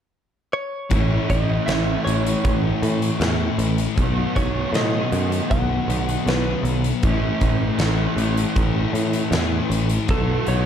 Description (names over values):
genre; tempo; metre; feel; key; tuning
rock, shoegaze and dream pop; 78 BPM; 4/4; straight; A lydian; A4 = 442 Hz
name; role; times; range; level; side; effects
direct-recorded clean electric guitar; melody; 0.5-10.7 s; A4 to F#5; -28 LUFS; right 1 dB; analog chorus, analog delay
overdriven electric guitar; riff; 0.9-10.7 s; A2 to F#4; -27 LUFS; right 12 dB; reverse reverb
thick fuzz guitar; riff; 0.9-10.7 s; A2 to B3; -24 LUFS; left 10 dB; distortion, analog chorus
picked electric bass; bass; 0.9-10.7 s; A1 to A2; -23 LUFS; equal; none
huge arena drum kit; drums; 0.9-10.6 s; hi-hat, kick drum, snare drum; -25 LUFS; equal; none
room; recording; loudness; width
studio reverb; dark, warm production; -18 LUFS; side -9 dB against mid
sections
0.9-10.7 A section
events
none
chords
0.0 N.C.; 0.9 A; 4.0 B7; 7.0 A; 10.1 B7